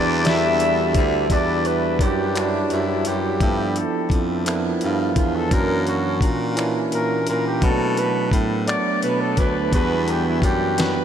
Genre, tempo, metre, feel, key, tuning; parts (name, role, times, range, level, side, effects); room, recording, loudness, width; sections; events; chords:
slow six-eight R&B; 57 BPM (dotted quarters); 6/8; straight; E minor; A4 = 440 Hz
warm flugelhorn; melody; 0.0-11.0 s; D4 to E5; -23 LUFS; left 1 dB; diffuse ambient delay
barky tine electric piano; accompaniment; 0.0-11.0 s; E3 to D5; -23 LUFS; right 3 dB; medium stereo tremolo
warm analog pad; sustained chords; 0.0-1.3 s; barely audible
clear baritone saxophone; bass; 0.0-11.0 s; D2 to B2; -24 LUFS; left 1 dB
dusty soul sampler-style drum kit; drums; 0.2-11.0 s; finger snaps, hi-hat, kick drum, snare drum; -24 LUFS; left 1 dB
wet huge ambient reverb, RT60 7.3 s; dreamy mix soaked in reverb; -18 LUFS; side -9 dB against mid
0.0-1.3 A section; 1.3-11.0 B section
flugelhorn solo 1.3-11.0
0.0 Em9; 3.4 G13; 5.5 F#7b13; 7.6 Bm7; 9.7 Em9